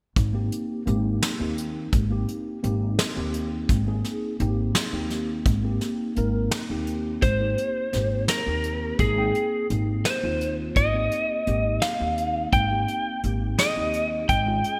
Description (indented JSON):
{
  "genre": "progressive instrumental, band music in an uneven meter",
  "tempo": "170 BPM (eighths)",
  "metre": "5/8",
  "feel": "straight",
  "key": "Ab major",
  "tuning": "A4 = 441 Hz",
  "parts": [
    { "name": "upright bass", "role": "bass", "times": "0.2-14.6 s", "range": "Ab1 to Eb2", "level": "-29 LUFS", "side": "equal", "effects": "none" },
    { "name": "soft brush drum kit", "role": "drums", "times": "0.2-14.8 s", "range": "hi-hat, kick drum, snare drum", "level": "-29 LUFS", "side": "equal", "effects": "none" },
    { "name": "mellow tine electric piano", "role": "accompaniment", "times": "0.3-14.8 s", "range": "Ab3 to G5", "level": "-32 LUFS", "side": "equal", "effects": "ensemble chorus" },
    { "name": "lightly driven lead guitar", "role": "melody", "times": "7.2-14.8 s", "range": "Ab4 to G5", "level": "-27 LUFS", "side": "equal", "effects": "digital delay" }
  ],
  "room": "moderate lush hall reverb, RT60 2.8 s",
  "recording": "bright 1980s-style digital production",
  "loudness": "-25 LUFS",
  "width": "mono",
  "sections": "0.2-7.2 A section; 7.2-14.8 B section",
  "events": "none",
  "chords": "0.2 Abmaj7; 14.3 Db/Ab"
}